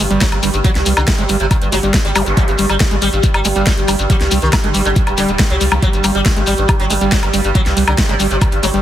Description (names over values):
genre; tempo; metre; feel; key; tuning
psychedelic trance; 139 BPM; 4/4; straight; unclear; A4 = 440 Hz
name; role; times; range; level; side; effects
sitar; melody; 0.0-8.8 s; G2 to G3; -20 LUFS; left 1 dB; phaser, sidechain pumping, dub echo
bubbling stepped-filter texture; sustained chords; 0.0-8.8 s; G3; -22 LUFS; right 3 dB; chorus, built-in reverb, sidechain pumping
screaming distorted acid line; riff; 0.0-8.8 s; F#3 to Ab3; -21 LUFS; moving between left 5 dB and right 7 dB; distortion, chorus, auto-pan, sidechain pumping, tape echo
round analog bass; bass; 0.0-8.8 s; D1 to C2; -19 LUFS; equal; tube saturation
big-room dance drum kit; drums; 0.0-8.8 s; hi-hat, snare drum, woodblock; -20 LUFS; left 1 dB; none
impact and zap; sound effects; 0.0-2.3 s; none; -27 LUFS; equal; none
shekere; percussion; 0.1-8.8 s; none; -24 LUFS; left 4 dB; none
electronic kick drum; drums; 0.2-8.5 s; none; -14 LUFS; equal; none
room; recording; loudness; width
light reverb; heavily compressed radio sound, multiband compression; -12 LUFS; side -12 dB against mid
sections
0.0-8.8 A section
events
impact 0.0-0.6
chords
0.0 G5